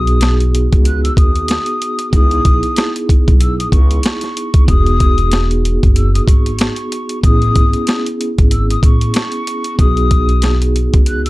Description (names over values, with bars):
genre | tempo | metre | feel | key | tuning
hip hop, boom-bap hip-hop | 94 BPM | 4/4 | swing 57% on 16ths | G# minor | A4 = 440 Hz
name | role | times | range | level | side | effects
breathy mellow jazz flute | melody | 0.0-11.3 s | C#6 to F#6 | -21 LUFS | left 3 dB | high-pass filter, low-pass filter, plate reverb, tape echo
vibraphone with soft mallets | accompaniment | 0.0-11.3 s | B3 to G#4 | -20 LUFS | right 1 dB | cassette tape, high-pass filter, low-pass filter, plate reverb
upright bass | bass | 0.0-11.3 s | E1 to D#2 | -15 LUFS | equal | none
boom bap sampler-style drum kit | drums | 0.1-11.3 s | hi-hat, kick drum, snare drum | -12 LUFS | equal | none
room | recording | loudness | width
little or no reverb | none | -11 LUFS | side -19 dB against mid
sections
0.0-11.3 A section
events
none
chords
0.0 G#m7/B; 2.1 C#m7; 4.7 Emaj7; 7.2 Amaj7; 9.8 G#m7/B